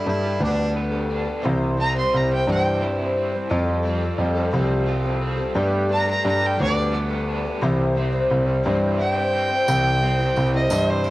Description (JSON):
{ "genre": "folk rock and heartland rock", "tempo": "58 BPM (dotted quarters)", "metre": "6/8", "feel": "straight", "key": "C major", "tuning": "A4 = 440 Hz", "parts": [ { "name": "warm harmonica", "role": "second line", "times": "0.0-0.8 s", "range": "D4 to E4", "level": "-29 LUFS", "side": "right 1 dB", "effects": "cassette tape" }, { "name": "picked twelve-string acoustic guitar", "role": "accompaniment", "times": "0.0-11.1 s", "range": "C3 to C5", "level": "-26 LUFS", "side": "left 1 dB", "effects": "cassette tape" }, { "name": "overdriven electric guitar", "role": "riff", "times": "0.0-11.1 s", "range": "C3 to F4", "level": "-30 LUFS", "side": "right 1 dB", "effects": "tremolo, cassette tape" }, { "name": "dark concert grand piano", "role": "bass", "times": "0.1-11.1 s", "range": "C2 to G2", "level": "-22 LUFS", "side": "equal", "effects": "none" }, { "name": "tonewheel organ", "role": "sustained chords", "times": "1.4-11.1 s", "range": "G3 to C5", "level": "-35 LUFS", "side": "right 1 dB", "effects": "none" }, { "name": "rich fiddle", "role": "melody", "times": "1.8-2.8, 5.9-11.1 s", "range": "C5 to C6", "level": "-23 LUFS", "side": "right 1 dB", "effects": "cassette tape" }, { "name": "tambourine", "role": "percussion", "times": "9.7-11.1 s", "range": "none", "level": "-35 LUFS", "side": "right 6 dB", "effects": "none" } ], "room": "light reverb, small room ambience", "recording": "home recording on cassette", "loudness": "-19 LUFS", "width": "side -17 dB against mid", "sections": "0.0-1.4 A section; 1.4-11.1 B section", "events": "fiddle solo 1.4-11.1", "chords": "0.0 Gadd9; 1.4 C; 3.5 Fadd9; 5.6 Gadd9; 7.6 C", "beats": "0.41 | 1.44 2.48 | 3.51 4.54 | 5.57 6.60 | 7.62 8.65 | 9.68 10.71" }